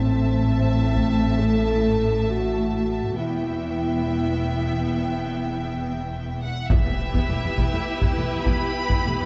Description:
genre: cinematic, epic orchestral film score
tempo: 68 BPM (dotted quarters)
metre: 12/8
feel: straight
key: E minor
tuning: A4 = 441 Hz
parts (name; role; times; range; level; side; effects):
- warm symphonic violin section; melody; 0.0-9.3 s; E5 to B5; -35 LUFS; equal; none
- rich symphonic violin section; second line; 0.0-9.3 s; G4 to E5; -36 LUFS; equal; none
- warm symphonic viola section; accompaniment; 0.0-9.3 s; A3 to E4; -34 LUFS; equal; none
- dark French horn section; sustained chords; 0.0-9.3 s; B3 to A4; -29 LUFS; equal; none
- rich symphonic cello section; bass; 0.0-9.3 s; E2 to A2; -30 LUFS; equal; none
- warm symphonic double bass section; bass; 0.0-9.1 s; E1 to A1; -29 LUFS; equal; none
- solo taiko drums; drums; 1.0-1.2, 6.7-9.3 s; none; -26 LUFS; equal; none
- impact; sound effects; 6.7-9.3 s; none; -36 LUFS; equal; none
room: moderate scoring stage reverb, RT60 1.7 s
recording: dark, warm production, nothing above 7.8 kHz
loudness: -23 LUFS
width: mono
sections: 0.0-6.7 A section; 6.7-9.3 B section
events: impact 6.7-9.3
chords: 0.0 Am; 3.2 Em

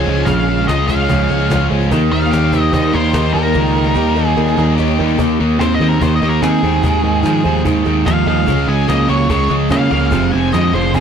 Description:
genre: classic rock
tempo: 146 BPM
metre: 4/4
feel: straight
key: unclear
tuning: A4 = 442 Hz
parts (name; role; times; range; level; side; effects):
- octave-fuzz lead guitar; melody; 0.0-11.0 s; Ab4 to Ab5; -19 LUFS; equal; distortion, slapback echo
- picked twelve-string acoustic guitar; accompaniment; 0.0-11.0 s; F2 to Ab4; -22 LUFS; left 11 dB; none
- warm upright piano; accompaniment; 0.0-11.0 s; Eb4 to Eb5; -26 LUFS; right 8 dB; none
- cranked stack guitar; riff; 0.0-11.0 s; F2 to Db5; -22 LUFS; left 15 dB; overdrive
- overdriven electric guitar; riff; 0.0-11.0 s; F2 to G4; -18 LUFS; right 14 dB; none
- modern bright picked electric bass; bass; 0.0-11.0 s; F1 to Eb3; -17 LUFS; left 1 dB; none
- cajon; drums; 0.1-11.0 s; none; -22 LUFS; left 1 dB; none
room: little or no reverb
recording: dry, close 1970s-style studio recording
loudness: -12 LUFS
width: side -7 dB against mid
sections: 0.0-5.2 A section; 5.2-11.0 B section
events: kick and snare drop out 3.5-5.2; lead electric guitar solo 5.2-11.0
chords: 0.0 Db; 1.9 Eb; 6.6 Ab/Eb; 8.5 Db; 10.1 Fm

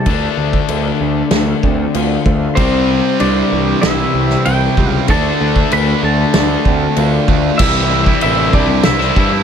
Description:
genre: quiet-loud alternative rock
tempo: 96 BPM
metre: 4/4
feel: straight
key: unclear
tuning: A4 = 440 Hz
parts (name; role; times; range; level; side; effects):
- twangy electric guitar; melody; 0.0-9.4 s; C4 to B5; -19 LUFS; equal; wide subtle chorus, analog delay
- fingerpicked plugged-in swing-style acoustic guitar; arpeggios; 0.0-7.6 s; C3 to F4; -22 LUFS; right 6 dB; analog delay
- cranked stack guitar; riff; 0.0-9.4 s; C3 to E4; -18 LUFS; left 10 dB; overdrive
- fuzz picked electric bass; bass; 0.1-9.4 s; A1 to G2; -18 LUFS; right 1 dB; overdrive
- loose indie drum kit; drums; 0.1-9.3 s; crash cymbal, kick drum, snare drum; -18 LUFS; equal; none
- tight distorted guitar; riff; 2.6-9.4 s; C3 to E4; -20 LUFS; right 12 dB; distortion
room: light reverb, small room ambience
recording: none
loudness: -11 LUFS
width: side -8 dB against mid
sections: 0.0-7.6 A section; 7.6-9.4 B section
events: none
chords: 0.1 Dm7; 2.6 C; 5.1 Dm7; 7.6 C

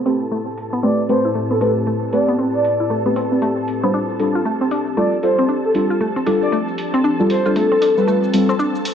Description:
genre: deep house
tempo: 116 BPM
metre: 4/4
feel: swing 60% on 16ths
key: unclear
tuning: A4 = 440 Hz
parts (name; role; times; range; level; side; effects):
- warbly tape-like pad; sustained chords; 0.0-8.9 s; A2 to B4; -26 LUFS; equal; chorus, built-in reverb, phaser
- deep mellow chord stab; stabs; 0.0-8.5 s; G3 to C5; -19 LUFS; equal; chorus, tape echo
- dark symphonic violin section; texture; 0.0-8.9 s; A4 to A5; -31 LUFS; right 3 dB; none
- mallet-like synth pluck; arpeggios; 0.1-8.7 s; A3 to F4; -22 LUFS; left 1 dB; chorus, phaser, tape echo
- electronic hi-hat and shaker; drums; 0.1-8.9 s; none; -34 LUFS; right 1 dB; overdrive, low-pass filter on perc, low-pass filter on hats, low-pass filter on room
- breathy flute-like synth lead; melody; 0.8-8.1 s; A4 to D5; -21 LUFS; equal; lush chorus, tape echo
room: moderate lush hall reverb, RT60 2.5 s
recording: cassette tape, low-pass filter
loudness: -16 LUFS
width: side -8 dB against mid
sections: 0.0-8.9 A section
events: filter sweep on drum 0.0-8.9; filter sweep on ambient pad 0.0-8.9; filter sweep on synth arpeggio sound 0.0-8.9; filter sweep 0.0-8.9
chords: 0.0 Am9; 3.9 F69; 8.1 G9sus4

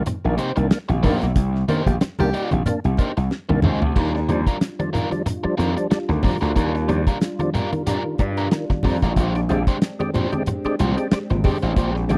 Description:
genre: funk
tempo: 92 BPM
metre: 4/4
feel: swing 56% on 16ths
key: unclear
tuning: A4 = 440 Hz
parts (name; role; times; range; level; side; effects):
- percussive tonewheel organ; stabs; 0.0-12.2 s; Bb2 to G4; -27 LUFS; equal; overdrive, chorus vibrato, slow rotary speaker
- gritty slap bass; bass; 0.0-12.2 s; Ab1 to G2; -24 LUFS; equal; overdrive
- biting overdriven guitar; accompaniment; 0.1-12.1 s; G3 to D5; -29 LUFS; equal; none
- damped 70s drum kit; drums; 0.1-12.2 s; crash cymbal, hi-hat, kick drum, snare drum, toms; -23 LUFS; equal; none
- congas; percussion; 0.1-12.2 s; none; -28 LUFS; equal; none
- breathy tenor saxophone; second line; 1.9-2.6 s; G4; -28 LUFS; equal; none
- soft string machine; sustained chords; 4.6-12.2 s; G3 to G4; -34 LUFS; equal; none
room: little or no reverb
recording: dry, close 1970s-style studio recording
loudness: -21 LUFS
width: mono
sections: 0.0-4.0 A section; 4.0-12.2 B section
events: drum fill 3.3-4.0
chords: 0.0 Cm7; 4.0 Ebmaj9; 9.2 Bb13

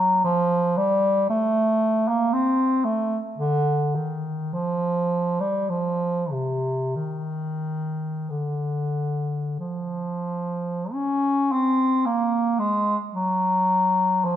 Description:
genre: classical, free, expressive piece for unaccompanied bass clarinet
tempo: 39-59 BPM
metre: 3/4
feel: rubato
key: unclear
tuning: A4 = 440 Hz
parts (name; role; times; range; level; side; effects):
- warm bass clarinet; solo; 0.0-14.4 s; C3 to Db4; -21 LUFS; equal; none
room: moderate scoring stage reverb, RT60 1.4 s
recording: none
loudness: -21 LUFS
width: side -11 dB against mid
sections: 0.0-11.0 A section; 11.0-14.4 B section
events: none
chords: none

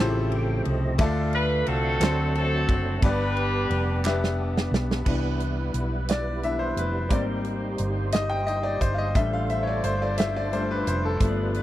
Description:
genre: slow gospel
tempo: 59 BPM (dotted quarters)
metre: 6/8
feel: straight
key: C major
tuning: A4 = 441 Hz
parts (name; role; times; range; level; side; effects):
- warm horn section; melody; 0.0-4.4 s; C4 to B4; -28 LUFS; equal; tape echo
- bright grand piano; accompaniment; 0.0-11.6 s; G2 to G5; -27 LUFS; left 2 dB; none
- percussive tonewheel organ; sustained chords; 0.0-11.6 s; E#3 to G5; -33 LUFS; right 2 dB; overdrive, chorus vibrato, slow rotary speaker
- hollow-body short-scale fingered electric bass; bass; 0.0-11.6 s; F1 to D2; -27 LUFS; equal; none
- modern studio drum kit; drums; 0.3-11.6 s; crash cymbal, hi-hat, kick drum, ride cymbal, snare drum; -25 LUFS; right 1 dB; none
- group handclap; percussion; 2.0-4.4 s; none; -35 LUFS; right 7 dB; none
- warm studio string section; sustained chords; 5.1-11.6 s; D4 to C5; -38 LUFS; right 1 dB; none
room: small room ambience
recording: dry, close 1970s-style studio recording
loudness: -22 LUFS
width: side -14 dB against mid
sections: 0.0-5.1 A section; 5.1-11.6 B section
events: tonewheel organ fill 0.0-1.0; drum fill 4.0-5.1; grand piano solo 5.1-11.6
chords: 0.0 A7alt; 1.0 Dm; 2.0 D7; 3.0 G; 5.1 Cmaj7; 7.1 Abmaj7; 9.2 F6

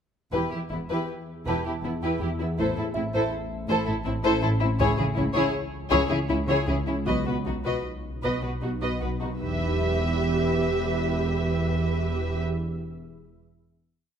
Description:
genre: cinematic, suspense film score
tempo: 80 BPM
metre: 3/4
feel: straight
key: E harmonic minor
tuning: A4 = 440 Hz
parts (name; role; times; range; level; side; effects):
- muted chamber violin section; melody; 0.3-12.4 s; E4 to E5; -31 LUFS; left 4 dB; none
- muted studio violin section; second line; 0.3-12.4 s; B3 to B4; -32 LUFS; left 2 dB; none
- muted studio viola section; accompaniment; 0.3-12.4 s; E4 to G4; -31 LUFS; right 2 dB; none
- muted studio cello section; bass; 0.3-12.4 s; E2 to C#3; -30 LUFS; right 2 dB; none
- muted studio double bass section; bass; 0.3-12.4 s; E1 to C#2; -31 LUFS; right 2 dB; none
- organ-like drone; drone; 1.1-12.4 s; A1 to E2; -32 LUFS; left 1 dB; ensemble chorus, built-in reverb
- music box; texture; 1.5-5.1 s; E5 to A5; -38 LUFS; right 2 dB; none
room: moderate scoring stage reverb, RT60 1.8 s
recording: close, detailed microphones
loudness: -24 LUFS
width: side -8 dB against mid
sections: 0.3-9.4 A section; 9.4-11.7 final chord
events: none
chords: 0.3 Em; 2.6 Am; 4.8 C#m; 7.1 B; 9.4 Em

